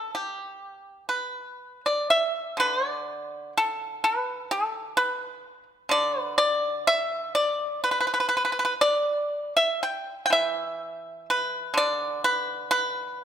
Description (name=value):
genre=chinese traditional, Chinese solo plucked strings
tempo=59-65 BPM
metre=2/4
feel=rubato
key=unclear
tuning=A4 = 440 Hz
part: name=pipa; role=solo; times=0.0-13.2 s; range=B2 to G5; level=-24 LUFS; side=equal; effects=none
room=moderate scoring stage reverb, RT60 1.8 s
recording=none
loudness=-23 LUFS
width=side -9 dB against mid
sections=0.0-2.1 A section; 2.1-13.2 B section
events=none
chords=none